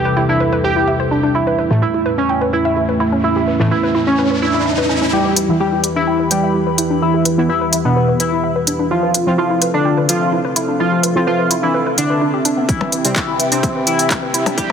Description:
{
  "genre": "melodic techno",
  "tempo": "127 BPM",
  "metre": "4/4",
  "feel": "straight",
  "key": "E phrygian",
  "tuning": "A4 = 440 Hz",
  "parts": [
    { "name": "resonant sweep polysynth", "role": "melody", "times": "0.0-14.7 s", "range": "B2 to G4", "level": "-17 LUFS", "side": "right 1 dB", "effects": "chorus, sidechain pumping, digital delay" },
    { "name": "dark analog pad", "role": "sustained chords", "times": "0.0-14.7 s", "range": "C3 to B5", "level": "-21 LUFS", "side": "equal", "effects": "chorus, sidechain pumping" },
    { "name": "analog drone", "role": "drone", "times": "0.0-5.2 s", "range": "E2 to G3", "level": "-27 LUFS", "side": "left 1 dB", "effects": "chorus, sidechain pumping" },
    { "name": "woody wave-folded pluck", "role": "arpeggios", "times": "0.1-14.7 s", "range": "B3 to G5", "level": "-21 LUFS", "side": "left 1 dB", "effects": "chorus, sidechain pumping, digital delay" },
    { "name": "riser", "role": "sound effects", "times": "3.0-5.1, 14.3-14.7 s", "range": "none", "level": "-23 LUFS", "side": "equal", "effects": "none" },
    { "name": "synth brass stab", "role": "stabs", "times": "1.7-13.2 s", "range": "A2 to F4", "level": "-22 LUFS", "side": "equal", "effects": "none" },
    { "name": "techno drum kit", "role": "drums", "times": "5.4-14.7 s", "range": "handclaps, hi-hat, percussion blips", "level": "-17 LUFS", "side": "left 1 dB", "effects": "studio reverb" },
    { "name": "electronic kick drum", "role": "drums", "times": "12.7-14.7 s", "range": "none", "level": "-22 LUFS", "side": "equal", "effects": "studio reverb" }
  ],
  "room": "light reverb, digital ambience",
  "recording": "dense, heavily limited modern master, high-pass filter, low-pass filter",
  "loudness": "-13 LUFS",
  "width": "side -7 dB against mid",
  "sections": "0.0-5.1 A section; 5.1-14.7 B section",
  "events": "filter sweep on analog synth pad 0.0-5.1; filter sweep 0.0-5.1, 5.1-14.7; riser 3.0-5.1; build-up 5.1-14.7; filter sweep on synth pluck 5.1-14.7",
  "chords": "0.0 C; 1.3 A; 5.1 Em; 8.9 F; 12.7 C",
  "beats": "0.40 0.88 | 1.35 1.82 2.29 2.77 | 3.24 3.71 4.18 4.66 | 5.13 5.60 6.07 6.55 | 7.02 7.49 7.96 8.44 | 8.91 9.38 9.85 10.32 | 10.80 11.27 11.74 12.21 | 12.69 13.16 13.63 14.11 | 14.58"
}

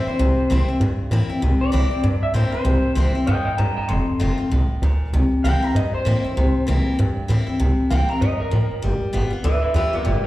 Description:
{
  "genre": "rockabilly",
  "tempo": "194 BPM",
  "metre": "4/4",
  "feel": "swing 60% on 8ths",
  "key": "C mixolydian",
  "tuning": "A4 = 440 Hz",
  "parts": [
    { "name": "electric guitar through a small old amp", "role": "melody", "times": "0.0-10.3 s", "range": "Bb4 to C6", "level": "-25 LUFS", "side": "equal", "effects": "slapback echo, tape echo" },
    { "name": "picked steel-string acoustic guitar", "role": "accompaniment", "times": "0.0-10.3 s", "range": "F2 to F4", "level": "-23 LUFS", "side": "left 2 dB", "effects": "none" },
    { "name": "upright bass", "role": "bass", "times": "0.1-10.3 s", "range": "F1 to A2", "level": "-20 LUFS", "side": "right 1 dB", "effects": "none" }
  ],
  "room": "light reverb",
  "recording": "live gig heard through the venue's PA, recital hall reverb",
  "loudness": "-18 LUFS",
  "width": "side -16 dB against mid",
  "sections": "0.0-10.3 A section",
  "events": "none",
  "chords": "0.0 C7; 3.9 F7; 5.1 C7; 8.8 G7",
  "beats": "| 0.19 0.50 0.81 1.12 | 1.43 1.73 2.04 2.35 | 2.66 2.97 3.28 3.59 | 3.90 4.21 4.51 4.82 | 5.13 5.44 5.75 6.06 | 6.37 6.67 6.98 7.29 | 7.60 7.91 8.21 8.52 | 8.83 9.14 9.45 9.76 | 10.06"
}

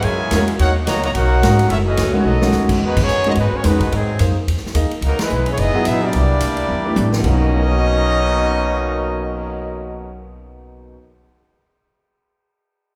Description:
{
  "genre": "jazz, big band swing",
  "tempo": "216 BPM",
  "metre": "4/4",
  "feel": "swing 60% on 8ths",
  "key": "B major",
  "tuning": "A4 = 440 Hz",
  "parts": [
    { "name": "clear trumpet section", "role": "melody", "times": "0.0-10.2 s", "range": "F#3 to A#5", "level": "-24 LUFS", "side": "equal", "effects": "none" },
    { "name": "bright trombone section", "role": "second line", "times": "0.0-10.2 s", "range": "B2 to F#4", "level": "-26 LUFS", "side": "equal", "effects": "none" },
    { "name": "clear saxophone section", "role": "sustained chords", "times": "0.0-2.8 s", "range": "B2 to F#4", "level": "-30 LUFS", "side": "equal", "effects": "none" },
    { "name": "upright bass", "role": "bass", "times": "0.0-10.9 s", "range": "F#1 to G#2", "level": "-22 LUFS", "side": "equal", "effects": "none" },
    { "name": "swinging big-band drum kit", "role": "drums", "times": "0.0-9.4 s", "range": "crash cymbal, cymbal swell, hi-hat, kick drum, ride cymbal, snare drum, toms", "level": "-27 LUFS", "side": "equal", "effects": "none" },
    { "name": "warm grand piano", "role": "accompaniment", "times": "0.3-11.2 s", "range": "B2 to F#6", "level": "-24 LUFS", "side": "equal", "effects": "none" }
  ],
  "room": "wet recital hall reverb, RT60 1.4 s",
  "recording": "recorded in a church or concert hall",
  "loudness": "-17 LUFS",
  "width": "mono",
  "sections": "0.0-2.8 A section; 2.8-7.2 B section; 7.2-9.5 C section",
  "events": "drum fill 2.3, 6.7-7.2; band accent 2.9, 5.2",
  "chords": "0.0 F#9; 0.6 Bmaj9; 1.7 F#m7; 2.3 B7; 2.8 Emaj9; 3.9 G#9; 5.0 C#m11; 6.1 C9; 7.2 Bmaj9",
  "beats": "0.04 0.31 | 0.59 0.87 1.14 1.42 | 1.70 1.98 2.25 2.53 | 2.81 3.08 3.36 3.64 | 3.91 4.19 4.47 4.75 | 5.02 5.30 5.58 5.86 | 6.13 6.41 6.69 6.97 | 7.24 7.52 7.80 8.08 | 8.36 8.63 8.91 9.19"
}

